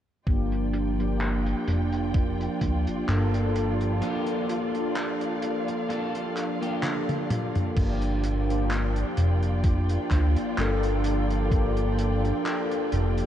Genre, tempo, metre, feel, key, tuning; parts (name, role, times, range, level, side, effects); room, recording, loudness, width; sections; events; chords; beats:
vaporwave; 64 BPM; 4/4; swing 55% on 16ths; A4 = 442 Hz
mellow synth brass; accompaniment; 0.3-13.3 s; F3 to A4; -28 LUFS; equal; wide subtle chorus, cassette tape, diffuse ambient delay
dark symphonic string section; sustained chords; 0.3-13.3 s; F4 to G5; -35 LUFS; equal
chorused synth bass; bass; 0.3-13.2 s; F1 to D2; -26 LUFS; equal; tube saturation
cloth-damped thuddy drum kit; drums; 0.3-13.3 s; crash cymbal, handclaps, hi-hat, toms; -35 LUFS; equal; low-pass filter on hats, low-pass filter on toms, low-pass filter on cymbals, low-pass filter on snare, low-pass filter on room
electronic kick drum; drums; 0.3-11.7 s; -25 LUFS; equal
electric guitar at the edge of break-up; riff; 4.0-7.3 s; Bb3 to A4; -37 LUFS; left 1 dB; wide subtle chorus, diffuse ambient delay
moderate cathedral reverb, RT60 6.3 s; dreamy mix soaked in reverb, cassette tape; -24 LUFS; side -11 dB against mid
0.3-7.8 A section; 7.8-13.3 B section
filter sweep on drum 0.3-7.8; break 4.0-7.8; drum fill 6.8-7.8
0.3 Gm7
| 0.27 1.21 2.14 3.08 | 4.02 4.96 5.89 6.83 | 7.77 8.71 9.64 10.58 | 11.52 12.46